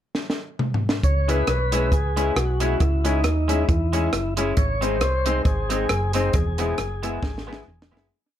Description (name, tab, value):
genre	ska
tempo	136 BPM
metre	4/4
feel	swing 56% on 8ths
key	C# minor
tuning	A4 = 440 Hz
part	compact cocktail drum kit	drums	0.1-8.1 s	hi-hat, kick drum, rim click, snare drum, toms	-24 LUFS	equal	none
part	tonewheel organ	melody	1.0-7.6 s	D#4 to C#5	-26 LUFS	equal	slow rotary speaker, tape echo, plate reverb
part	hollow-body short-scale fingered electric bass	bass	1.0-8.1 s	E1 to E2	-24 LUFS	equal	none
part	semi-hollow electric guitar	accompaniment	1.3-8.1 s	G#3 to E4	-30 LUFS	right 4 dB	wide subtle chorus, tape echo
part	clear upright piano	stabs	1.3-8.1 s	G#3 to G#4	-28 LUFS	left 8 dB	tape echo
room	light reverb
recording	none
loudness	-20 LUFS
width	side -11 dB against mid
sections	0.0-1.0 pickup bar; 1.0-8.1 head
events	drum fill 0.1-1.0, 7.2-8.1; fade-out 6.3-8.1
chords	0.0 N.C.; 1.0 C#m; 4.6 G#; 6.3 E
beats	0.15 0.59 | 1.03 1.48 1.92 2.36 | 2.81 3.25 3.69 4.13 | 4.58 5.02 5.46 5.90 | 6.35 6.79 7.23 7.67